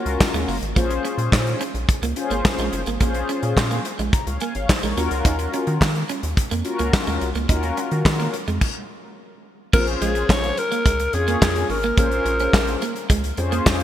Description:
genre	early-eighties boogie funk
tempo	107 BPM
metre	4/4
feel	straight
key	Bb minor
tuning	A4 = 440 Hz
part	mellow synth brass	accompaniment	0.0-13.8 s	C4 to Bb5	-26 LUFS	left 4 dB	chorus
part	clean electric guitar	riff	0.0-13.6 s	Ab3 to Eb4	-29 LUFS	right 7 dB	lush chorus
part	rubbery square bass	bass	0.1-13.8 s	Gb1 to Eb3	-25 LUFS	equal	none
part	modern studio drum kit	drums	0.1-13.8 s	crash cymbal, handclaps, hi-hat, kick drum, snare drum	-21 LUFS	equal	gated reverb
part	breathy alto saxophone	melody	9.7-13.1 s	Ab4 to Db5	-23 LUFS	left 1 dB	none
room	light reverb, studio ambience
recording	bright 1980s-style digital production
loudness	-19 LUFS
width	side -11 dB against mid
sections	0.0-9.7 A section; 9.7-13.8 B section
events	stop 8.6-9.7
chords	0.0 Ebm9; 0.8 Bbm9; 5.0 Ebm9; 9.7 Bbm9

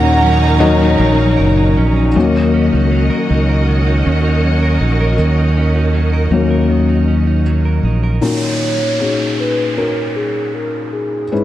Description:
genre	pop ballad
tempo	78 BPM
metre	4/4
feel	straight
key	unclear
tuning	A4 = 439 Hz
part	hollow clarinet-like synth lead	melody	0.0-1.4, 8.2-11.4 s	G#4 to F#5	-20 LUFS	right 2 dB	chorus
part	warm studio violin section	second line	0.0-2.1 s	A#4 to A#5	-22 LUFS	right 4 dB	none
part	felt-muted upright piano	accompaniment	0.0-11.4 s	G#2 to D#5	-17 LUFS	left 4 dB	none
part	warm studio string section	sustained chords	0.0-8.2 s	F#3 to D#5	-20 LUFS	equal	none
part	direct-recorded clean electric guitar	arpeggios	0.0-8.8 s	D#3 to A#4	-22 LUFS	right 6 dB	spring reverb
part	fingered electric bass	bass	0.0-8.2 s	F#1 to D#2	-14 LUFS	right 1 dB	none
part	downlifter	sound effects	8.2-11.4 s	none	-24 LUFS	right 1 dB	none
room	light reverb, small room reverb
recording	dark, warm production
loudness	-12 LUFS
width	side -13 dB against mid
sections	0.0-2.2 A section; 2.2-8.2 B section; 8.2-11.4 C section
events	felt piano solo 2.2-8.2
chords	0.0 D#m7

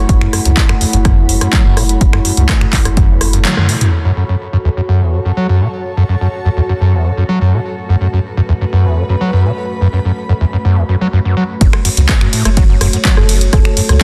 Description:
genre	acid house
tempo	125 BPM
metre	4/4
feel	straight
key	F# minor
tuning	A4 = 439 Hz
part	soft struck synth lead	melody	0.0-0.2, 13.2-14.0 s	A4 to C#5	-27 LUFS	equal	chorus, delay
part	dark analog pad	sustained chords	0.0-14.0 s	A3 to F#5	-26 LUFS	equal	chorus, sidechain pumping
part	warm sub bass	bass	0.0-3.5, 11.6-14.0 s	F#1 to C#2	-16 LUFS	equal	tube saturation, sidechain pumping
part	granular cloud pad	texture	0.0-11.6 s	F#4 to B5	-28 LUFS	equal	built-in reverb, sidechain pumping
part	electronic kick drum	drums	0.1-3.1, 11.6-14.0 s	none	-14 LUFS	equal	none
part	punchy analog drum machine	drums	0.1-3.9, 11.6-14.0 s	finger snaps, handclaps, hi-hat, ride cymbal, rim click, toms	-19 LUFS	equal	low-pass filter on snare, low-pass filter on hats, low-pass filter on toms, low-pass filter on cymbals
part	overdriven acid bass	riff	0.2-13.9 s	F#1 to A3	-16 LUFS	equal	distortion, subtle chorus, sidechain pumping
room	light reverb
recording	dense, heavily limited modern master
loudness	-13 LUFS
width	mono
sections	0.0-3.9 A section; 3.9-11.6 B section; 11.6-14.0 C section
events	drum fill 3.5-3.9; band accent 3.5; filter sweep on analog synth pad 3.9-11.6; drop 11.6-14.0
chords	0.0 F#m

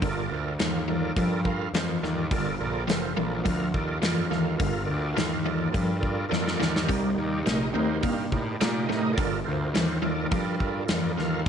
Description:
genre	blues rock power trio and southern rock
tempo	105 BPM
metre	4/4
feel	straight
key	G minor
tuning	A4 = 443 Hz
part	overdriven tonewheel organ	sustained chords	0.0-11.5 s	Eb4 to F5	-31 LUFS	right 4 dB	chorus vibrato, slow rotary speaker
part	overdriven electric guitar	riff	0.0-11.4 s	G2 to Bb3	-28 LUFS	left 1 dB	tremolo
part	fuzz picked electric bass	bass	0.0-11.5 s	F1 to Bb2	-31 LUFS	equal	overdrive
part	big rock drum kit	drums	0.0-11.5 s	hi-hat, kick drum, snare drum	-30 LUFS	equal	none
room	light reverb, studio reverb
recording	nothing above 10.7 kHz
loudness	-24 LUFS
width	side -8 dB against mid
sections	0.0-11.5 A section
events	drum fill 6.3-6.9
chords	0.0 Gm7; 6.9 Cm7; 9.2 Gm7

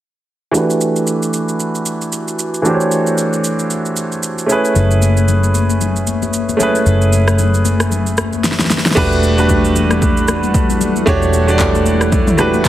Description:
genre	amapiano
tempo	114 BPM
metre	4/4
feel	swing 58% on 16ths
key	E dorian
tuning	A4 = 440 Hz
part	clear baby grand piano	accompaniment	0.5-12.7 s	E3 to D5	-16 LUFS	right 2 dB	low-pass filter
part	deep house drum kit	drums	0.5-12.7 s	crash cymbal, handclaps, kick drum, rim click, shaker, snare drum, toms	-18 LUFS	equal	overdrive
part	vintage muted fingered electric bass	bass	4.8-12.7 s	E1 to F#1	-16 LUFS	equal	none
part	congas	percussion	4.8-12.6 s	none	-22 LUFS	left 9 dB	none
part	lush unison pad	sustained chords	9.0-12.7 s	E3 to F#5	-20 LUFS	left 1 dB	chorus, sidechain pumping
room	light reverb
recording	heavily compressed radio sound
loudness	-12 LUFS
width	side -13 dB against mid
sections	0.5-9.0 A section; 9.0-12.7 B section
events	filter sweep on grand piano 0.5-9.0; drum fill 8.4-9.0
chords	0.5 Em11; 4.5 F#m11; 9.0 Em11

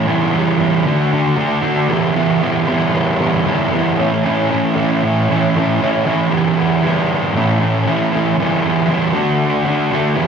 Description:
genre	rock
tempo	116 BPM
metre	4/4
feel	straight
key	E dorian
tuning	A4 = 440 Hz
part	fuzz guitar	solo	0.0-10.3 s	A2 to F#4	-14 LUFS	right 1 dB	distortion, slapback echo
room	wet booth ambience, RT60 0.2 s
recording	rough rehearsal-room recording, tube saturation, small room ambience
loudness	-14 LUFS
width	side -6 dB against mid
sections	0.0-6.3 A section; 6.3-10.3 B section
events	none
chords	0.1 Em; 0.9 D; 1.9 Em; 4.0 A; 6.3 Em; 7.3 A; 8.4 Em; 9.1 D

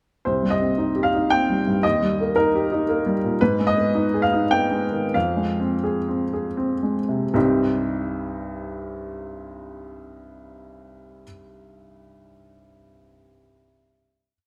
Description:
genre	neoclassical minimalist piano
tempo	75-117 BPM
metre	3/4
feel	rubato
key	C minor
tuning	A4 = 441 Hz
part	warm upright piano	solo	0.3-14.4 s	C2 to G5	-22 LUFS	equal	none
room	moderate concert hall reverb, RT60 2.1 s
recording	none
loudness	-22 LUFS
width	mono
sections	0.3-7.3 A section; 7.3-12.1 final chord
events	slowing down 2.6-7.3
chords	0.3 Cm; 1.8 Eb; 3.4 Abm; 5.1 Fm; 7.3 Cm

